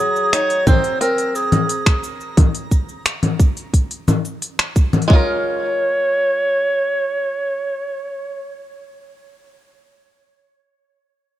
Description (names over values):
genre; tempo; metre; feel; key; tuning
folktronica; 88 BPM; 4/4; straight; Db major; A4 = 444 Hz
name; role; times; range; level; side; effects
mellow clarinet; melody; 0.0-8.6 s; Ab4 to Db5; -19 LUFS; right 1 dB; tape echo
bluegrass banjo; arpeggios; 0.0-9.1 s; Gb3 to Bb4; -24 LUFS; equal; tape echo
twinkling granular texture; texture; 0.0-2.4 s; Bb5; -37 LUFS; right 3 dB; built-in reverb
organic electronic drum kit; drums; 0.2-5.2 s; congas, finger snaps, hi-hat, shaker; -19 LUFS; left 2 dB; none
electronic kick drum; drums; 0.7-5.2 s; none; -13 LUFS; equal; none
room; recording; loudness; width
light reverb, digital ambience; dark, warm production; -16 LUFS; side -13 dB against mid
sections
0.0-5.1 A section; 5.1-7.8 B section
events
none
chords
0.0 Ab7; 2.4 N.C.; 5.1 Db6